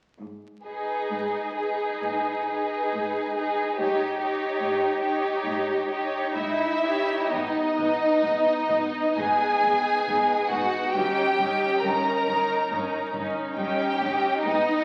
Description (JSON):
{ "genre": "classical, slow romantic movement for string orchestra", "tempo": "67 BPM", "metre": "4/4", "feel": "uneven beats, rubato", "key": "G# minor", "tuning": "A4 = 441 Hz", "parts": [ { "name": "warm symphonic cello section", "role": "bass", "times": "0.2-14.5 s", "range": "G2 to G#2", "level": "-42 LUFS", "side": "equal", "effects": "none" }, { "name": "warm symphonic violin section", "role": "second line", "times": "0.6-14.8 s", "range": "D#4 to A#4", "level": "-28 LUFS", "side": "equal", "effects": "none" }, { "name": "warm symphonic violin section", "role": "melody", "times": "0.7-14.8 s", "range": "B4 to A#5", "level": "-31 LUFS", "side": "equal", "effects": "none" }, { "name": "rich symphonic viola section", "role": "accompaniment", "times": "0.7-14.8 s", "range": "B3 to D#4", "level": "-32 LUFS", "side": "equal", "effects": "none" }, { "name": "warm symphonic double bass section", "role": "bass", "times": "7.3-14.5 s", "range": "G1 to G#1", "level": "-49 LUFS", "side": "equal", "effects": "none" } ], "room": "wet recital hall reverb, RT60 1.3 s", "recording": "very old 78 rpm record, vinyl crackle", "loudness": "-25 LUFS", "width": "mono", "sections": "0.2-7.3 A section; 7.3-14.8 B section", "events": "none", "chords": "0.2 G#m; 10.9 D#7/G", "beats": "| 0.20 1.13 2.04 2.93 | 3.79 4.61 5.47 6.37 | 7.33 8.23 9.18 10.07 | 10.95 11.83 12.69 13.56 | 14.44" }